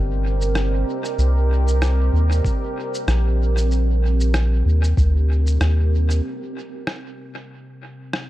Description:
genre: ambient dub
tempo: 95 BPM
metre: 4/4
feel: swing 57% on 16ths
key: C minor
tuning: A4 = 439 Hz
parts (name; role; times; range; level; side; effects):
- deep dark ambient pad; sustained chords; 0.0-8.3 s; C4 to Eb5; -27 LUFS; right 2 dB; chorus, built-in reverb
- soft dub sub bass; bass; 0.0-6.2 s; G1 to Eb2; -17 LUFS; equal; none
- electronic shaker and rim click; drums; 0.4-8.3 s; none; -29 LUFS; equal; overdrive, studio ambience, dub echo
- electronic kick drum; drums; 2.4-5.1 s; none; -22 LUFS; equal; overdrive, studio ambience
room: little or no reverb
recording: echo-heavy mix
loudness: -17 LUFS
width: side -16 dB against mid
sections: 0.0-6.2 A section; 6.2-8.3 B section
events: filter sweep on ambient pad 6.2-8.3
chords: 0.0 Cm7; 6.2 C7(no3)

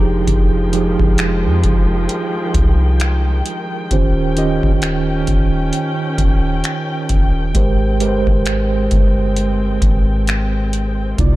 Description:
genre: contemporary R&B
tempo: 66 BPM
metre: 4/4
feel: swing 58% on 16ths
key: unclear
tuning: A4 = 440 Hz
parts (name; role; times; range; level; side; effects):
- mellow tine electric piano; accompaniment; 0.0-11.4 s; C3 to Eb5; -19 LUFS; right 4 dB; medium stereo tremolo
- muted studio string section; sustained chords; 0.0-11.4 s; C3 to G5; -25 LUFS; left 2 dB; none
- soft 808-style bass; bass; 0.0-11.4 s; Eb1 to F2; -18 LUFS; equal; none
- booming analog drum machine; drums; 0.3-11.4 s; finger snaps, hi-hat, kick drum; -16 LUFS; equal; none
room: little or no reverb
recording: dark, warm production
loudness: -14 LUFS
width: side -17 dB against mid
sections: 0.0-11.4 A section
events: none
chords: 0.0 Fm9; 3.9 Eb13; 7.5 Abmaj9

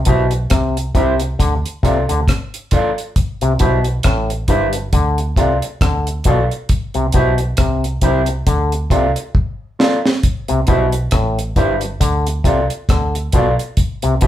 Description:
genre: roots reggae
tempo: 68 BPM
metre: 4/4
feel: swing 58% on 16ths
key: unclear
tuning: A4 = 441 Hz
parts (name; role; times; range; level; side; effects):
- vintage muted fingered electric bass; bass; 0.0-14.3 s; G1 to D2; -19 LUFS; right 1 dB; none
- mellow electric guitar; accompaniment; 0.1-14.3 s; E4 to F5; -18 LUFS; right 2 dB; none
- auto-wah clav; riff; 0.1-14.3 s; G2 to D3; -20 LUFS; left 4 dB; none
- deep reggae drum kit; drums; 0.1-14.3 s; hi-hat, kick drum, rim click, snare drum; -17 LUFS; equal; none
room: moderate studio reverb, RT60 0.5 s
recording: band playing live in one room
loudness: -14 LUFS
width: side -12 dB against mid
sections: 0.0-14.3 A section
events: drum fill 9.3-10.2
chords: 0.0 C; 1.4 Dm; 3.2 C; 4.9 Dm; 6.7 C; 8.5 Dm; 10.2 C; 12.0 Dm; 13.8 N.C.

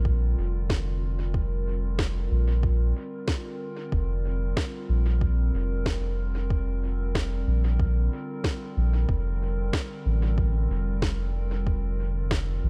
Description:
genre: ambient dub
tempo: 93 BPM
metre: 4/4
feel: straight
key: unclear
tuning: A4 = 441 Hz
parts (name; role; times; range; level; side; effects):
- warbly tape-like pad; sustained chords; 0.0-12.7 s; D3 to Bb4; -38 LUFS; equal; chorus, built-in reverb
- soft dub sub bass; bass; 0.0-12.7 s; F1 to Bb1; -27 LUFS; equal; none
- electronic kick drum; drums; 0.1-12.4 s; none; -30 LUFS; equal; studio ambience
- electronic snare drum; drums; 0.7-12.4 s; none; -36 LUFS; equal; studio ambience, dub echo
room: digital ambience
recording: none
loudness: -27 LUFS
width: mono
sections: 0.0-12.7 A section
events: none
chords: 0.0 Fsus24; 9.1 Gm7/F

